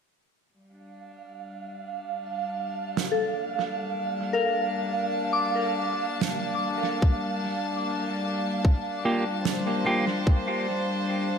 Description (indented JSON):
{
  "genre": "ambient dub",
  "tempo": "74 BPM",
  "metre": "4/4",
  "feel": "swing 56% on 16ths",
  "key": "G minor",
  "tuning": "A4 = 440 Hz",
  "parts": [
    { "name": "bright chamber string section", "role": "sustained chords", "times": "0.5-11.4 s", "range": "G3 to A5", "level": "-30 LUFS", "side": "left 2 dB", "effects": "none" },
    { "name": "wind-like tuned noise texture", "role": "texture", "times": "1.0-11.4 s", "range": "F5", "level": "-32 LUFS", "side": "right 6 dB", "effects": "built-in reverb" },
    { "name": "snare drum", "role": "drums", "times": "3.0-9.6 s", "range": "none", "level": "-32 LUFS", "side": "right 5 dB", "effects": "dub echo" },
    { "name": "soft synth bell", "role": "arpeggios", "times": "3.1-11.4 s", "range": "A4 to D6", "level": "-30 LUFS", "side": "left 4 dB", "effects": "chorus, phaser, low-pass filter, dub echo" },
    { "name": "electronic kick drum", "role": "drums", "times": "7.0-10.4 s", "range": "none", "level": "-20 LUFS", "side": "equal", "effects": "none" },
    { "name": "semi-hollow electric guitar", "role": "stabs", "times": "9.1-10.0 s", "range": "Bb3 to G4", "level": "-27 LUFS", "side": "right 1 dB", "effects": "dub echo" }
  ],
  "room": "moderate echo chamber reverb, RT60 2.1 s",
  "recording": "none",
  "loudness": "-24 LUFS",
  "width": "side -7 dB against mid",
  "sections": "0.5-11.4 A section",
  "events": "fade-in on string section 0.5-11.4; filter sweep on synth bell 0.5-11.4",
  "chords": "0.5 Gm7"
}